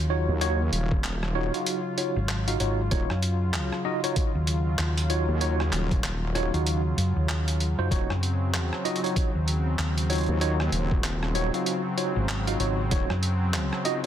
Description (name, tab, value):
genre	glitch hop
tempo	96 BPM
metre	4/4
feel	swing 60% on 16ths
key	Eb dorian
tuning	A4 = 439 Hz
part	warm analog pad	sustained chords	0.0-14.1 s	Db3 to F4	-32 LUFS	equal	chorus, tremolo, sidechain pumping
part	hollow-body short-scale fingered electric bass	bass	0.0-13.7 s	Ab1 to Gb2	-26 LUFS	equal	none
part	tine electric piano	stabs	0.1-14.1 s	Eb4 to F5	-30 LUFS	right 1 dB	overdrive, medium stereo tremolo, sidechain pumping, ping-pong delay
part	wobble bass	bass	0.3-13.1 s	Eb1 to Eb2	-27 LUFS	equal	chorus, tube saturation
part	boom bap sampler-style drum kit	drums	0.4-14.1 s	handclaps, hi-hat, rim click	-32 LUFS	right 1 dB	soft clipping on snare
part	electronic kick drum	drums	0.9-13.1 s	none	-26 LUFS	equal	none
room	light reverb, digital ambience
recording	dense, heavily limited modern master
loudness	-24 LUFS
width	side -10 dB against mid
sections	0.0-14.1 A section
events	none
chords	0.0 Ebm9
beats	| 0.41 1.04 1.66 2.29 | 2.91 3.54 4.16 4.79 | 5.41 6.04 6.66 7.29 | 7.91 8.54 9.16 9.79 | 10.41 11.04 11.66 12.29 | 12.91 13.54